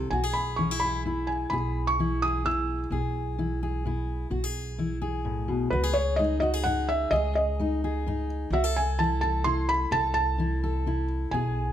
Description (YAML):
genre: acoustic folk duo or small band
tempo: 129 BPM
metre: 3/4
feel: straight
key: E major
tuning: A4 = 440 Hz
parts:
  - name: fingerpicked steel-string acoustic guitar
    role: accompaniment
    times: 0.0-11.7 s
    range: G#2 to A4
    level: -30 LUFS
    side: left 2 dB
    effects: none
  - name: upright bass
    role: bass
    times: 0.0-11.7 s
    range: B1 to C#2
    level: -30 LUFS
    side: right 1 dB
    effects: none
  - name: felt-muted upright piano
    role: melody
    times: 0.1-2.8, 5.7-11.7 s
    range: B4 to E6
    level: -27 LUFS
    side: right 1 dB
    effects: plate reverb
room: light reverb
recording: close, detailed microphones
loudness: -25 LUFS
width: side -10 dB against mid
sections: 0.0-5.7 A section; 5.7-11.7 A section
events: none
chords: 0.1 E/B; 5.7 C#sus2; 8.5 Am/C